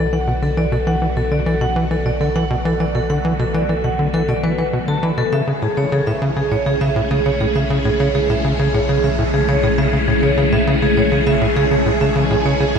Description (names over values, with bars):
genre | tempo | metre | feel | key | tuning
ambient, sequencer-driven space music | 101 BPM | 4/4 | straight | unclear | A4 = 443 Hz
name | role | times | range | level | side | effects
phased string machine | sustained chords | 0.0-12.8 s | D3 to G#4 | -22 LUFS | left 1 dB | ensemble chorus, phaser
vibraphone with hard mallets | arpeggios | 0.0-12.8 s | G#4 to B5 | -20 LUFS | moving between left 4 dB and right 7 dB | auto-pan, analog delay
tight sequencer bass | riff | 0.0-12.8 s | A2 to E3 | -19 LUFS | equal | analog delay
warm sub bass | bass | 0.0-12.8 s | B1 | -25 LUFS | equal | none
room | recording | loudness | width
wet huge ambient reverb, RT60 8.0 s | none | -15 LUFS | side -6 dB against mid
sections
0.0-12.8 A section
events
fade-in on string machine 0.0-12.8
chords
0.0 Bm7; 5.3 Amaj7/B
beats
| 0.57 1.17 1.76 2.36 | 2.95 3.54 4.14 4.73 | 5.33 5.92 6.51 7.11 | 7.70 8.30 8.89 9.48 | 10.08 10.67 11.27 11.86 | 12.46